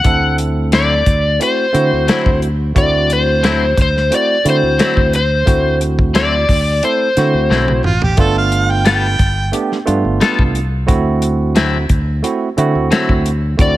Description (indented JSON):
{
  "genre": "straight-eighth soul blues",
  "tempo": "89 BPM",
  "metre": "4/4",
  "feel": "straight",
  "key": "D mixolydian",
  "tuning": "A4 = 440 Hz",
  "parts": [
    { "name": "overdriven slide guitar", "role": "melody", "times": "0.0-7.8, 13.6-13.8 s", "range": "C5 to F#5", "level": "-16 LUFS", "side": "left 2 dB", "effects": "none" },
    { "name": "barky tine electric piano", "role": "accompaniment", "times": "0.0-13.8 s", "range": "A3 to A4", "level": "-19 LUFS", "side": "right 4 dB", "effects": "none" },
    { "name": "fingered electric bass", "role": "bass", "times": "0.0-13.8 s", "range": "G1 to D3", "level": "-17 LUFS", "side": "equal", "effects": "none" },
    { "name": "warm soul drum kit", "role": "drums", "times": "0.0-13.8 s", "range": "hi-hat, kick drum, snare drum, toms", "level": "-16 LUFS", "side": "equal", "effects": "none" },
    { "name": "clean electric guitar", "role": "stabs", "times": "0.7-13.1 s", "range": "D3 to A4", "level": "-21 LUFS", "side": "left 5 dB", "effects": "spring reverb" },
    { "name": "warm harmonica", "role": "second line", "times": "7.9-9.5 s", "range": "F4 to G5", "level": "-19 LUFS", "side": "right 3 dB", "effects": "overdrive" }
  ],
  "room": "light reverb, small room ambience",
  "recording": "none",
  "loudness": "-12 LUFS",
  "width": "side -15 dB against mid",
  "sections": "0.0-13.8 A section",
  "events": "drum fill 7.5-8.2",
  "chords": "0.0 D9; 8.2 G9; 10.9 D9"
}